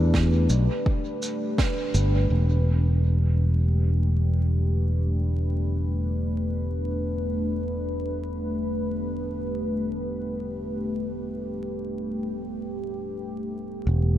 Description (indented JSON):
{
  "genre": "ambient dub",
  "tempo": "free time",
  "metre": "none",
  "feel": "none",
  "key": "E minor",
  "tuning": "A4 = 440 Hz",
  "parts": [
    { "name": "deep dark ambient pad", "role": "sustained chords", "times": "0.0-14.2 s", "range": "A3 to B4", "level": "-29 LUFS", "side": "left 1 dB", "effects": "chorus, built-in reverb" },
    { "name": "fingered electric bass", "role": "bass", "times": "0.0-14.2 s", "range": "E1 to E2", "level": "-23 LUFS", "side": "equal", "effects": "tube saturation" },
    { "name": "electronic kick drum", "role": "drums", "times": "0.1-1.7 s", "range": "none", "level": "-24 LUFS", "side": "equal", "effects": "overdrive" },
    { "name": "snare drum and shaker", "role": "drums", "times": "0.1-2.1 s", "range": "none", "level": "-33 LUFS", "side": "right 4 dB", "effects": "dub echo" }
  ],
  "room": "light reverb, small room ambience",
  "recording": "vinyl crackle",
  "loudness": "-23 LUFS",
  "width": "side -12 dB against mid",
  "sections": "0.0-2.3 A section; 2.3-14.2 B section",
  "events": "band accent 1.6-1.9",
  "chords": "0.0 Em7"
}